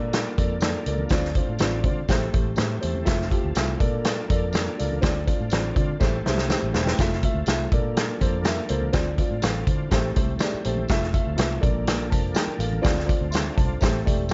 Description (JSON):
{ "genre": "uptempo 1960s-style soul", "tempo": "123 BPM", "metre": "4/4", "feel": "straight", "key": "unclear", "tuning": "A4 = 443 Hz", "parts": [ { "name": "dark concert grand piano", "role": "accompaniment", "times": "0.0-14.3 s", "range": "A3 to C6", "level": "-31 LUFS", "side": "equal", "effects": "none" }, { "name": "tonewheel organ", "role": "sustained chords", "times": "0.0-14.3 s", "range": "Bb3 to A4", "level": "-37 LUFS", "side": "equal", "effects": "fast rotary speaker, chorus vibrato" }, { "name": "vintage muted fingered electric bass", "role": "bass", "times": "0.0-14.3 s", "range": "E1 to D3", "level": "-30 LUFS", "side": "equal", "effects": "none" }, { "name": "vintage drum kit", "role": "drums", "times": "0.1-14.3 s", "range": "hi-hat, kick drum, snare drum", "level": "-26 LUFS", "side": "equal", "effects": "none" }, { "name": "tambourine", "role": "percussion", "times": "0.1-14.3 s", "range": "none", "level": "-43 LUFS", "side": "equal", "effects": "none" }, { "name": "congas", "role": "percussion", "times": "0.4-14.3 s", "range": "none", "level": "-40 LUFS", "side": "equal", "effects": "none" } ], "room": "studio reverb", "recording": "dark, warm production, nothing above 7.6 kHz", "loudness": "-24 LUFS", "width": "mono", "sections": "0.0-14.3 A section", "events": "drum fill 6.0-7.0; grand piano fill 6.0-7.0", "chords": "0.0 Bbmaj7; 1.1 Dm7; 2.1 Am7; 3.1 Fmaj7; 3.8 Bbmaj7; 5.0 Dm7; 6.0 Am7; 7.0 Fmaj7; 7.7 Bbmaj7; 8.9 Dm7; 9.9 Am7; 10.9 Fmaj7; 11.6 Bbmaj7; 12.8 Dm7; 13.8 Am7" }